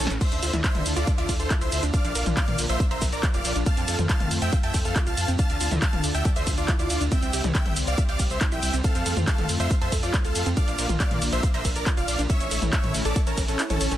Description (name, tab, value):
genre	uplifting trance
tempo	139 BPM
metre	4/4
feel	straight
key	D minor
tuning	A4 = 438 Hz
part	big supersaw lead	melody	0.0-13.9 s	C#4 to A5	-30 LUFS	equal	sidechain pumping, tape echo
part	analog string pad	sustained chords	0.0-14.0 s	D3 to A4	-34 LUFS	left 1 dB	ensemble chorus, sidechain pumping
part	gritty driven synth bass	bass	0.0-14.0 s	D1 to Bb2	-28 LUFS	equal	sidechain pumping
part	punchy analog drum machine	drums	0.0-14.0 s	crash cymbal, handclaps, hi-hat, ride cymbal, shaker, snare drum, toms	-29 LUFS	equal	none
part	wide unison pluck	arpeggios	0.1-14.0 s	C4 to Bb5	-35 LUFS	right 3 dB	sidechain pumping, tape echo
part	electronic kick drum	drums	0.2-13.5 s	none	-24 LUFS	equal	none
room	digital ambience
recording	dense, heavily limited modern master, lossy compression artefacts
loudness	-21 LUFS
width	side -12 dB against mid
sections	0.0-14.0 A section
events	drum fill 0.0; kick drops out 13.6-14.0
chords	0.2 Dmadd9; 1.9 Bb; 3.7 F; 5.4 Dmadd9; 7.1 C; 8.8 F; 10.6 Bb; 12.3 A